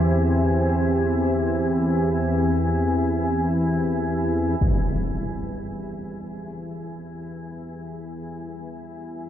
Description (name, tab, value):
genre	dark ambient drone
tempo	free time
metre	none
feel	none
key	E minor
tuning	A4 = 444 Hz
part	sweeping resonant pad	sustained chords	0.0-9.3 s	E2 to G4	-25 LUFS	equal	chorus
part	gamelan-type bronze metallophone	arpeggios	0.0-9.3 s	D3 to G4	-39 LUFS	right 2 dB	none
part	organ-like drone	drone	0.0-9.3 s	E2 to E3	-26 LUFS	left 1 dB	ensemble chorus, built-in reverb
part	bronze singing bowl	texture	0.0-4.6 s	G4	-40 LUFS	right 2 dB	none
part	impact	percussion	4.6-4.9 s	none	-25 LUFS	equal	low-pass filter on sfx
room	wet huge ambient reverb, RT60 7.3 s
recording	worn, warbling old tape, cassette tape, warbly pitch drift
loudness	-20 LUFS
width	side -10 dB against mid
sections	0.0-4.6 A section; 4.6-9.3 B section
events	none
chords	0.0 Cadd9/E; 4.6 Em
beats	free time